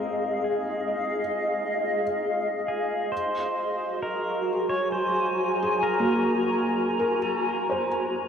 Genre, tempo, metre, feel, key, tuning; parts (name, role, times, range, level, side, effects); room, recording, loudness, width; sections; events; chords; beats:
ambient; 66 BPM; 3/4; straight; A4 = 441 Hz
pedal steel guitar; melody; 0.0-8.1 s; Ab4 to Db5; -31 LUFS; right 1 dB; tape echo
granular cloud pad; sustained chords; 0.0-8.3 s; Gb4 to Bb5; -26 LUFS; equal; built-in reverb
felt-muted upright piano; arpeggios; 0.0-8.3 s; Bb3 to C5; -30 LUFS; equal; tape echo
wet huge ambient reverb, RT60 7.0 s; -24 LUFS; side -7 dB against mid
0.0-8.3 A section
fade-in on pedal steel guitar 0.0-8.3
0.0 Bb9sus4; 3.1 Gbmaj9
| 0.43 1.33 2.22 | 3.12 4.01 4.92 | 5.83 6.74 7.67